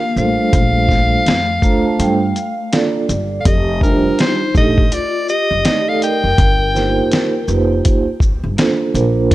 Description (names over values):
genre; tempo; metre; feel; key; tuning
hip hop, jazz-hop; 82 BPM; 4/4; swing 61% on 16ths; unclear; A4 = 441 Hz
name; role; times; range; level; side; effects
clear soprano saxophone; melody; 0.0-7.4 s; Bb4 to G5; -19 LUFS; left 1 dB; tape echo
vibraphone with soft mallets; second line; 0.0-9.3 s; A3 to Bb4; -22 LUFS; left 3 dB; none
vibraphone with soft mallets; accompaniment; 0.2-9.3 s; G3 to Bb5; -18 LUFS; right 4 dB; none
upright bass; bass; 0.2-9.3 s; F1 to G2; -19 LUFS; equal; none
trip hop sampler-style drum kit; drums; 0.2-9.3 s; hi-hat, kick drum, shaker, snare drum; -16 LUFS; equal; vintage 12-bit sampler grit
room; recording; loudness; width
light reverb, small room ambience; none; -13 LUFS; side -16 dB against mid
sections
0.0-3.5 A section; 3.5-9.3 B section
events
vibraphone fill 1.3-3.5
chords
0.0 Gm7; 3.5 F13; 6.4 Eb69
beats
| 0.53 1.26 1.99 2.73 | 3.46 4.19 4.92 5.65 | 6.38 7.12 7.85 8.58 | 9.31